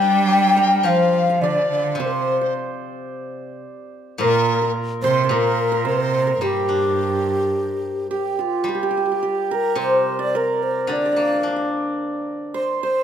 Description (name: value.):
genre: chinese traditional, Chinese chamber ensemble.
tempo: 108 BPM.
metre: 4/4.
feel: rubato.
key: G yu mode.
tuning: A4 = 440 Hz.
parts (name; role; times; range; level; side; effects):
mellow low xiao; melody; 0.0-13.0 s; F4 to G5; -21 LUFS; left 1 dB; none.
hammered dulcimer; second line; 0.0-13.0 s; F4 to G5; -25 LUFS; right 8 dB; none.
mellow hollow large dizi; second line; 0.0-8.1 s; G4 to G5; -26 LUFS; left 8 dB; none.
warm cello; second line; 0.0-8.1 s; G2 to G3; -23 LUFS; right 6 dB; none.
steel-string zither; accompaniment; 0.0-12.5 s; Bb2 to Bb4; -25 LUFS; left 4 dB; none.
room: light reverb.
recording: close, detailed microphones.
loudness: -18 LUFS.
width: side -9 dB against mid.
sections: 0.0-8.7 A section; 8.7-13.0 B section.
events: none.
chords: none.